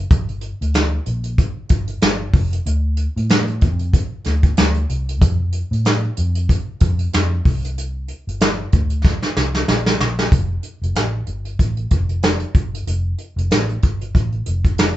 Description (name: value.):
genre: indie pop, bedroom pop.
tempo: 94 BPM.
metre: 4/4.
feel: swing 55% on 16ths.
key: F major.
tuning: A4 = 442 Hz.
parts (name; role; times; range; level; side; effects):
vintage muted fingered electric bass; bass; 0.0-15.0 s; F1 to A2; -20 LUFS; equal; none.
soft brush drum kit; drums; 0.1-15.0 s; hi-hat, kick drum, snare drum; -17 LUFS; equal; none.
room: moderate studio reverb, RT60 0.5 s.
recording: band playing live in one room, nothing above 8.0 kHz.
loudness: -16 LUFS.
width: side -14 dB against mid.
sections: 0.0-10.3 A section; 10.3-15.0 B section.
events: drum fill 9.0-10.3.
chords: none.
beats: | 0.11 0.74 1.38 2.02 | 2.66 3.30 3.94 4.58 | 5.21 5.85 6.49 7.13 | 7.77 8.41 9.05 9.68 | 10.32 10.96 11.60 12.24 | 12.88 13.52 14.15 14.79.